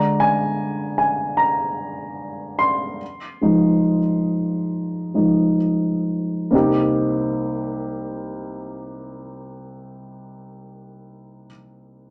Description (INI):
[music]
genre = pop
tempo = 64-77 BPM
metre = 4/4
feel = straight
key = C minor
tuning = A4 = 439 Hz
[part]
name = dark grand piano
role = accompaniment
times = 0.0-12.1 s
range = C2 to C6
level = -22 LUFS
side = equal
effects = none
[sound]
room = wet club reverb, RT60 0.6 s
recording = none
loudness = -21 LUFS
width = mono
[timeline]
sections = 0.0-6.5 A section; 6.5-10.2 B section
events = slowing down 0.0-6.5; grand piano solo 0.0-6.5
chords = 0.0 Bb7/D; 3.0 Fm7; 6.5 Cm7